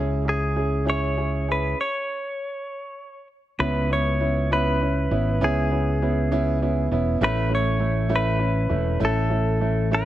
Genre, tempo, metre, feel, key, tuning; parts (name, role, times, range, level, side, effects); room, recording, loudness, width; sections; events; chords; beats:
six-eight pop ballad; 66 BPM (dotted quarters); 6/8; straight; A4 = 441 Hz
warm baby grand piano; accompaniment; 0.0-10.1 s; A3 to G#4; -25 LUFS; right 2 dB
fretless electric bass; bass; 0.0-10.1 s; E1 to C#2; -24 LUFS; equal
direct-recorded clean electric guitar; melody; 0.3-10.1 s; G#4 to C#5; -26 LUFS; equal
light reverb, small room ambience; -21 LUFS; side -13 dB against mid
0.0-3.6 A section; 3.6-10.1 B section
stop 1.8-3.6
0.0 C#m; 3.6 C#m7; 7.2 A
0.87 | 1.77 2.69 | 3.60 4.50 | 5.41 6.31 | 7.21 8.10 | 9.01 9.91